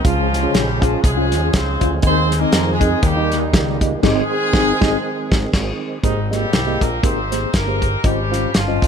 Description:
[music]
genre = uptempo gospel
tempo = 120 BPM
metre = 4/4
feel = swing 56% on 8ths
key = Ab major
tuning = A4 = 440 Hz
[part]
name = clear horn section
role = melody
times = 0.0-8.9 s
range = Eb3 to C5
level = -22 LUFS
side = equal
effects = tape echo
[part]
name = mellow tine electric piano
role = accompaniment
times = 0.0-8.9 s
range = Ab2 to F5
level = -21 LUFS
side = left 2 dB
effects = medium stereo tremolo
[part]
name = percussive tonewheel organ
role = sustained chords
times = 0.0-6.0 s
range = Eb3 to Ab4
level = -26 LUFS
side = right 5 dB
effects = slow rotary speaker, overdrive, chorus vibrato
[part]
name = fat analog bass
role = bass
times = 0.0-8.9 s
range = F1 to F2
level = -22 LUFS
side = equal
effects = none
[part]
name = warm soul drum kit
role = drums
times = 0.0-8.9 s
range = crash cymbal, hi-hat, kick drum, snare drum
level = -18 LUFS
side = equal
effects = none
[sound]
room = light reverb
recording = none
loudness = -15 LUFS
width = side -7 dB against mid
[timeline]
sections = 0.0-6.0 A section; 6.0-8.9 B section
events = band accent 4.0-6.0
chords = 0.0 Db; 2.0 Ab/Eb; 3.0 Eb; 4.0 Ab; 6.0 Abmaj9; 8.0 Dbmaj9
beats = | 0.04 0.54 1.04 1.54 | 2.03 2.53 3.03 3.53 | 4.03 4.53 5.03 5.53 | 6.03 6.53 7.03 7.54 | 8.04 8.54

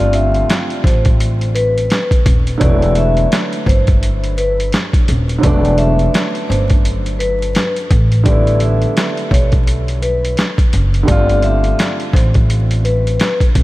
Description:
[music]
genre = hip hop, boom-bap hip-hop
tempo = 85 BPM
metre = 4/4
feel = swing 60% on 16ths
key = E minor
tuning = A4 = 440 Hz
[part]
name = vibraphone with soft mallets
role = melody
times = 0.0-13.4 s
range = B4 to E5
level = -20 LUFS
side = left 2 dB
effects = high-pass filter, low-pass filter, ping-pong delay
[part]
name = warm grand piano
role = accompaniment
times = 0.0-13.6 s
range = D3 to F4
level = -21 LUFS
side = right 3 dB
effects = high-pass filter, low-pass filter
[part]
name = upright bass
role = bass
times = 0.0-13.6 s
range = D#1 to B1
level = -16 LUFS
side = equal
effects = none
[part]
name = boom bap sampler-style drum kit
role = drums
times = 0.0-13.6 s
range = hi-hat, kick drum, snare drum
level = -15 LUFS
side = equal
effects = none
[sound]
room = light reverb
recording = vinyl crackle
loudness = -12 LUFS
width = side -18 dB against mid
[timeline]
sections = 0.0-13.6 A section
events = none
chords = 0.0 G9sus4; 2.6 E9sus4; 7.9 A9sus4; 11.1 G9sus4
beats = 0.49 1.20 1.91 | 2.61 3.32 4.02 4.73 | 5.43 6.14 6.85 7.55 | 8.26 8.96 9.67 10.38 | 11.08 11.79 12.49 13.20

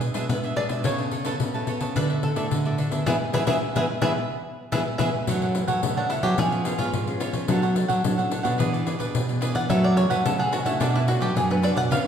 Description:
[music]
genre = samba and choro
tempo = 108 BPM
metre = 4/4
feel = straight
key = F# minor from 5.3 s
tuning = A4 = 439 Hz
[part]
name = bluegrass banjo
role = melody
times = 0.0-12.1 s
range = D4 to F#5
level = -28 LUFS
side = right 1 dB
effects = none
[part]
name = cavaquinho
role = accompaniment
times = 0.0-12.1 s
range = D4 to A5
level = -30 LUFS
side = right 2 dB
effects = none
[part]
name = nylon-string guitar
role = accompaniment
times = 0.0-12.1 s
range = F#2 to A4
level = -30 LUFS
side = left 2 dB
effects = none
[part]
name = nylon-string guitar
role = bass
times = 0.0-12.1 s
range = G#2 to B3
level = -26 LUFS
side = right 1 dB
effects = none
[part]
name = pandeiro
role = percussion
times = 0.0-12.1 s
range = none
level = -28 LUFS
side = left 3 dB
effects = none
[sound]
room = wet recital hall reverb, RT60 1.6 s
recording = recorded in a church or concert hall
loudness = -21 LUFS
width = side -8 dB against mid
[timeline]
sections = 0.0-5.3 A section; 5.3-12.1 B section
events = band accent 3.1-5.3; five-string banjo solo 5.3-12.1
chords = 0.0 E7/B; 0.8 Aadd9/C#; 2.0 Dsus2; 3.1 E; 5.3 F#m7; 6.4 C#7; 7.5 Dmaj7/F#; 8.6 E7; 9.7 F#m7; 10.8 Bm7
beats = 0.29 | 0.85 1.40 1.96 2.51 | 3.06 3.62 4.17 4.72 | 5.28 5.83 6.38 6.94 | 7.49 8.04 8.60 9.15 | 9.70 10.26 10.81 11.36 | 11.91

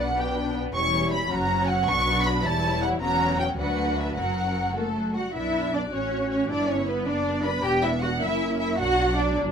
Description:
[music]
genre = quick classical-period movement for string orchestra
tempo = 105 BPM (dotted quarters)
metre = 6/8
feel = straight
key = B minor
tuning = A4 = 438 Hz
[part]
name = warm symphonic violin section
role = melody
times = 0.0-9.4 s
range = A4 to C#6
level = -27 LUFS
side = equal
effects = none
[part]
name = warm studio violin section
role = second line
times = 0.0-9.4 s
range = B3 to B5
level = -31 LUFS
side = equal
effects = none
[part]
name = rich studio viola section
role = accompaniment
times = 0.0-9.5 s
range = F#3 to F#4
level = -30 LUFS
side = left 1 dB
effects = none
[part]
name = rich studio double bass section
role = bass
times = 0.0-9.5 s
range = E1 to D2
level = -30 LUFS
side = right 1 dB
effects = none
[part]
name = warm studio cello section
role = bass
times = 0.0-9.4 s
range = D2 to B4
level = -29 LUFS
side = right 1 dB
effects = none
[sound]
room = light reverb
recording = none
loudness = -22 LUFS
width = side -7 dB against mid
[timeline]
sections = 0.0-5.4 A section; 5.4-9.5 B section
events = none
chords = 0.0 G/B; 0.7 C#dim/E; 1.3 F#; 1.9 Bm; 2.4 C#dim/E; 3.0 F#7/E; 3.6 Bm/D; 4.2 F#; 5.4 Bm; 5.9 F#m/A; 6.5 G; 7.6 Em; 8.2 F#7; 8.8 Bm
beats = 0.18 | 0.74 1.31 | 1.87 2.44 | 3.02 3.60 | 4.18 4.77 | 5.36 5.93 | 6.51 7.08 | 7.65 8.22 | 8.79 9.36

